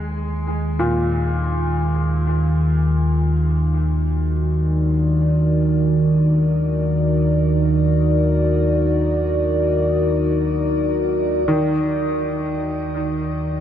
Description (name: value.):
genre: dark ambient drone.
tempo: free time.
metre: none.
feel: none.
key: unclear.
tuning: A4 = 440 Hz.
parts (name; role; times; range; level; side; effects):
clear grand piano; arpeggios; 0.0-13.6 s; Bb2 to Ab3; -24 LUFS; left 1 dB; diffuse ambient delay, shimmer reverb.
analog drone; drone; 0.0-13.6 s; Eb2 to Eb3; -18 LUFS; equal; chorus.
quartz singing bowl; texture; 0.0-11.5 s; none; barely audible; none; none.
dark analog pad; sustained chords; 3.6-13.6 s; Eb4 to D5; -22 LUFS; left 1 dB; wide subtle chorus, shimmer reverb.
room: wet huge ambient reverb, RT60 7.6 s.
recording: dark, warm production, nothing above 10.5 kHz.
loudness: -17 LUFS.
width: side -10 dB against mid.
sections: 0.0-11.5 A section; 11.5-13.6 A section.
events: filter sweep on synth drone 11.5-13.6.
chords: 0.0 Ebm.